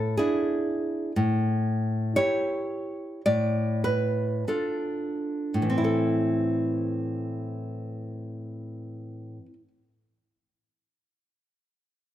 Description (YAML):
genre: romantic piece for solo classical guitar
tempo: 41-63 BPM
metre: 2/4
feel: rubato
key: A minor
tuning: A4 = 440 Hz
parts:
  - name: nylon-string guitar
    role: solo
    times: 0.0-9.7 s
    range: A2 to D5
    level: -25 LUFS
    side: equal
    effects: none
room: light reverb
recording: close, detailed microphones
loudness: -25 LUFS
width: side -12 dB against mid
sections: 0.0-5.8 A section; 5.8-11.0 B section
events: slowing down 0.2-5.8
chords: 0.0 E7/A; 1.2 A7; 3.3 Dm/A; 5.8 Am